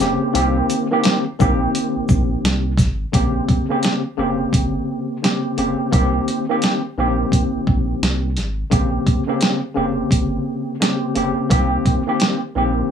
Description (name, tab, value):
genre	hip hop, boom-bap hip-hop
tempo	86 BPM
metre	4/4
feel	swing 63% on 16ths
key	Bb dorian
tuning	A4 = 440 Hz
part	tine electric piano	accompaniment	0.0-12.9 s	Db3 to G4	-19 LUFS	equal	overdrive, fast stereo tremolo, cassette tape, high-pass filter, low-pass filter
part	soft dub sub bass	bass	0.0-12.8 s	F1 to C2	-23 LUFS	equal	none
part	dusty soul sampler-style drum kit	drums	0.0-12.4 s	hi-hat, kick drum, shaker, snare drum	-18 LUFS	equal	none
room	light reverb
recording	small room ambience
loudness	-16 LUFS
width	side -8 dB against mid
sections	0.0-3.1 A section; 3.1-12.9 B section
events	none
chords	0.3 Cm7; 3.1 Bbm69; 5.9 Cm7; 8.7 Bbm69; 11.5 Cm7